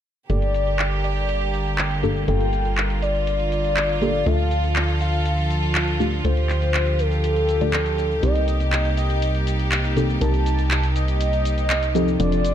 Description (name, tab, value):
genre	progressive house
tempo	121 BPM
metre	4/4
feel	straight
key	G minor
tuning	A4 = 440 Hz
part	warm velvety synth lead	melody	0.3-12.5 s	A4 to A5	-26 LUFS	left 1 dB	chorus, tape echo
part	rich studio string section	sustained chords	0.3-12.5 s	C3 to A4	-26 LUFS	right 1 dB	none
part	deep mellow chord stab	stabs	0.3-12.5 s	G2 to D5	-25 LUFS	left 1 dB	chorus, digital delay
part	tight sequencer bass	bass	0.3-12.5 s	F1 to D2	-23 LUFS	equal	none
part	house drum kit	drums	0.3-12.5 s	handclaps, hi-hat, shaker	-27 LUFS	equal	low-pass filter on hats, low-pass filter on perc, low-pass filter on snare
room	light reverb, digital ambience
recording	none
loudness	-19 LUFS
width	side -10 dB against mid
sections	0.3-12.5 A section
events	filter sweep on synth stab 0.3-12.5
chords	0.3 Gmadd9; 4.3 Dm; 8.2 Cm7